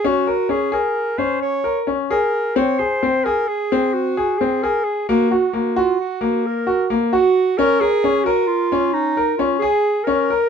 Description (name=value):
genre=contemporary instrumental, chamber music in an uneven meter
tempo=264 BPM (eighths)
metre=11/8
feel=straight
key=Bb minor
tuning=A4 = 440 Hz
part: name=warm clarinet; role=melody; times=0.0-10.5 s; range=Eb4 to Db5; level=-20 LUFS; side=right 4 dB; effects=none
part: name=clear concert grand piano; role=arpeggios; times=0.0-10.5 s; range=Bb3 to Bb4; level=-18 LUFS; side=left 3 dB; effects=none
room=light reverb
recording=close, detailed microphones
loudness=-16 LUFS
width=side -7 dB against mid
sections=0.0-10.5 A section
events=none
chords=0.0 Bbm7; 2.6 Ab/C; 5.1 Gb/Bb; 7.6 Bbm7